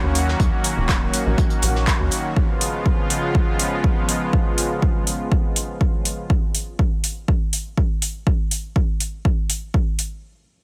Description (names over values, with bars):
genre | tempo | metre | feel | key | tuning
progressive house | 122 BPM | 4/4 | straight | unclear | A4 = 441 Hz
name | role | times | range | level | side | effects
supersaw pad | sustained chords | 0.0-6.3 s | Db3 to Gb4 | -27 LUFS | equal | sidechain pumping
tight sequencer bass | bass | 0.0-2.1 s | Eb1 to Eb2 | -24 LUFS | equal | sidechain pumping
deep house drum kit | drums | 0.2-10.1 s | handclaps, hi-hat | -27 LUFS | equal | overdrive, sidechain pumping on hats
modern studio drum kit | drums | 0.2-2.2 s | hi-hat, snare drum | -36 LUFS | equal | high-pass filter on hats, high-pass filter on snare, high-pass filter on room
electronic kick drum | drums | 0.4-9.8 s | none | -23 LUFS | equal | overdrive
room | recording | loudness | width
small room ambience | none | -21 LUFS | mono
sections
0.0-10.2 A section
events
none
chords
0.0 Ebm7; 2.4 Db7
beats
| 0.40 0.89 1.38 1.87 | 2.37 2.86 3.35 3.84 | 4.33 4.82 5.32 5.81 | 6.30 6.79 7.28 7.78 | 8.27 8.76 9.25 9.74